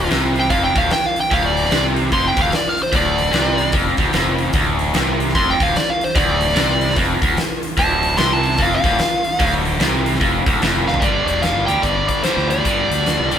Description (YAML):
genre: blues rock power trio and southern rock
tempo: 148 BPM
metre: 4/4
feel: swing 62% on 8ths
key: D minor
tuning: A4 = 440 Hz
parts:
  - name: fuzz lead guitar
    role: melody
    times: 0.0-13.4 s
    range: C5 to C6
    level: -19 LUFS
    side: equal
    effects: distortion
  - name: overdriven electric guitar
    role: riff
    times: 0.0-13.4 s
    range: D2 to G3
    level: -19 LUFS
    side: equal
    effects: none
  - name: fuzz fingered electric bass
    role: bass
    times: 0.0-13.4 s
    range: D1 to G2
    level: -23 LUFS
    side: equal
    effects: overdrive
  - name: huge arena drum kit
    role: drums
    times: 0.0-13.4 s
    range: hi-hat, kick drum, snare drum, toms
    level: -21 LUFS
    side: equal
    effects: none
room: moderate stone room reverb, RT60 1.3 s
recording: band playing live in one room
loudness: -15 LUFS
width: side -9 dB against mid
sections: 0.0-11.0 A section; 11.0-13.4 B section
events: lead electric guitar solo 0.0-11.0; drum fill 10.8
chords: 0.0 Dm; 11.0 G5